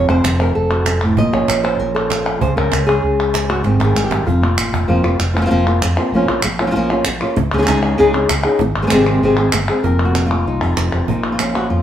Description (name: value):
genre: flamenco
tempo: 194 BPM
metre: 4/4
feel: straight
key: unclear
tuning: A4 = 437 Hz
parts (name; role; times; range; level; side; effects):
- flamenco guitar; melody; 0.0-11.8 s; F2 to F5; -16 LUFS; equal; none
- fretless electric bass; bass; 0.0-11.8 s; F1 to F2; -19 LUFS; equal; none
- cajon; percussion; 0.1-4.8, 7.4-11.7 s; none; -25 LUFS; right 3 dB; none
- palmas hand claps; percussion; 0.1-11.7 s; none; -22 LUFS; equal; none
room: moderate stone room reverb, RT60 1.0 s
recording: band playing live in one room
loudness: -13 LUFS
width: side -10 dB against mid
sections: 0.0-4.9 A section; 4.9-9.8 B section; 9.8-11.8 C section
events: drum fill 3.7-4.9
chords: 0.0 F5; 1.2 Bbm; 2.4 Db5; 3.7 Ab; 4.3 Fsus4; 6.1 Bbm; 7.4 Dbsus2; 8.6 Ab; 9.8 Fsus4; 11.1 Bbm